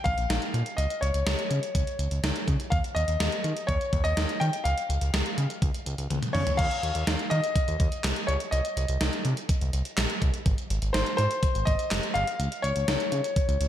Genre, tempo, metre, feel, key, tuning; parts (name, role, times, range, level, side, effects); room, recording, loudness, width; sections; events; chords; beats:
synth-pop; 124 BPM; 4/4; straight; A4 = 442 Hz
clear grand piano; melody; 0.0-13.7 s; C5 to G5; -30 LUFS; left 2 dB; slapback echo, digital delay
smooth synth bass; bass; 0.1-13.7 s; F1 to Eb3; -28 LUFS; equal
gated 80s digital drum machine; drums; 0.1-13.7 s; crash cymbal, handclaps, hi-hat, kick drum, snare drum, toms; -28 LUFS; equal; gated reverb, gated reverb snare
moderate lush hall reverb, RT60 2.0 s; big arena sound; -24 LUFS; side -11 dB against mid
0.0-6.6 A section; 6.6-13.7 B section
drum fill 6.1-6.6
0.0 Bb5; 0.8 N.C.; 4.7 Db; 6.6 Cmadd11 (rootless); 8.5 Cm; 10.5 Ab; 12.4 N.C.
0.30 | 0.78 1.27 1.75 2.23 | 2.72 3.20 3.69 4.17 | 4.65 5.14 5.62 6.11 | 6.59 7.07 7.56 8.04 | 8.52 9.01 9.49 9.98 | 10.46 10.94 11.43 11.91 | 12.39 12.88 13.36